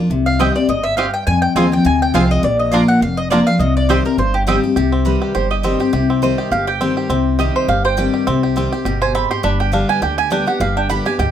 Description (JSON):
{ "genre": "bluegrass", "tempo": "206 BPM", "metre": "4/4", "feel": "swing 55% on 8ths", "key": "C minor, C harmonic minor from 4.8 s", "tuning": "A4 = 440 Hz", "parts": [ { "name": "picked steel-string acoustic guitar", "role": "accompaniment", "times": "0.0-11.3 s", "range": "F2 to G4", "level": "-18 LUFS", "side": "left 3 dB", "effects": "none" }, { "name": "upright bass", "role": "bass", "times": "0.1-11.3 s", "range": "F1 to F2", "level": "-20 LUFS", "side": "right 1 dB", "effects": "none" }, { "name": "mandolin", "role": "melody", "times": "0.3-4.4 s", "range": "G4 to Ab5", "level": "-19 LUFS", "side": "left 1 dB", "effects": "plate reverb" }, { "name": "bluegrass banjo", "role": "arpeggios", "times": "0.4-11.3 s", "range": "C4 to C5", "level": "-21 LUFS", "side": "right 3 dB", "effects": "none" }, { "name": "mandolin", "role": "stabs", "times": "0.4-11.3 s", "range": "Bb3 to C6", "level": "-20 LUFS", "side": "right 5 dB", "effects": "none" } ], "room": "moderate small room ambience, RT60 0.5 s", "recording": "none", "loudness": "-14 LUFS", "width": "side -10 dB against mid", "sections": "0.0-4.8 A section; 4.8-11.3 B section", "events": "mandolin solo 4.8-11.3", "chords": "0.1 Cm; 1.3 Fm; 2.4 Bb; 3.6 Cm; 9.4 G" }